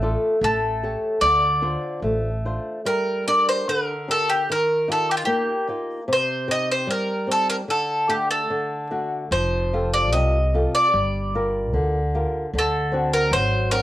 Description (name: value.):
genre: fado-style ballad.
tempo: 75 BPM.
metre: 2/4.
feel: rubato.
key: G minor.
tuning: A4 = 439 Hz.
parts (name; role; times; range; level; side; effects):
flamenco guitar; accompaniment; 0.0-13.8 s; C3 to C#5; -25 LUFS; equal; cassette tape.
upright bass; bass; 0.0-2.6, 9.3-13.8 s; F1 to D2; -24 LUFS; equal; none.
bowl-back mandolin; melody; 0.4-13.8 s; F4 to Eb5; -21 LUFS; equal; none.
room: light reverb.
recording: home recording on cassette.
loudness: -20 LUFS.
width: side -14 dB against mid.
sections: 0.0-2.9 A section; 2.9-13.8 B section.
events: none.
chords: 0.4 A7; 1.2 Dm7; 2.9 Gm; 4.5 Ebadd9; 6.1 Cm; 7.7 Dsus4; 8.5 D; 9.3 Fadd9; 10.9 Gm7; 12.5 D7.